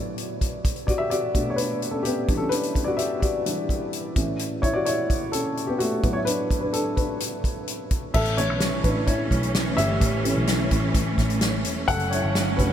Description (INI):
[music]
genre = piano-driven pop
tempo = 128 BPM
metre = 4/4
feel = straight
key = unclear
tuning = A4 = 440 Hz
[part]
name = dark upright piano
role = accompaniment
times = 0.0-12.7 s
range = A2 to F#5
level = -25 LUFS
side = left 1 dB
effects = none
[part]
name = natural country drum kit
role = drums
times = 0.2-12.7 s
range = crash cymbal, hi-hat, kick drum, snare drum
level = -26 LUFS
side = equal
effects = none
[part]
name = warm studio string section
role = sustained chords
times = 8.1-12.7 s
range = E3 to C#4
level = -27 LUFS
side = right 1 dB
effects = none
[part]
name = vintage muted picked electric bass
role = bass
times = 8.1-12.7 s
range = E1 to B1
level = -27 LUFS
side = equal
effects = none
[sound]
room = moderate huge ambient reverb, RT60 7.6 s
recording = dreamy mix soaked in reverb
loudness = -22 LUFS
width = side -10 dB against mid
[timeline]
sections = 0.0-8.1 A section; 8.1-12.7 B section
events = upright piano solo 0.0-8.1, 8.1-12.7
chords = 0.0 D6/A; 0.6 Bm7; 2.3 Em7; 4.2 A; 6.0 D6/A; 8.1 A; 11.9 F#m